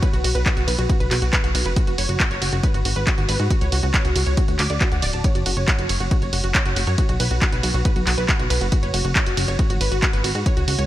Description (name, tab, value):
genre	uplifting trance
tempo	138 BPM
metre	4/4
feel	straight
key	unclear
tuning	A4 = 440 Hz
part	wide unison pluck	arpeggios	0.0-10.8 s	F#4 to D6	-26 LUFS	right 2 dB	cassette tape, sidechain pumping, ping-pong delay
part	electronic kick drum	drums	0.0-10.5 s	none	-20 LUFS	equal	none
part	punchy analog drum machine	drums	0.0-10.9 s	handclaps, hi-hat, ride cymbal	-24 LUFS	right 1 dB	none
part	plucky analog bass	bass	0.1-10.9 s	D1 to G#2	-22 LUFS	equal	tube saturation, sidechain pumping
room	light reverb, digital ambience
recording	none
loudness	-18 LUFS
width	side -14 dB against mid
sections	0.0-10.9 A section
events	none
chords	0.0 B5; 1.8 F#5; 2.6 G#m7; 3.5 C#sus4; 4.4 D; 5.2 F#5; 7.0 B5; 8.7 F#5; 9.6 G#m7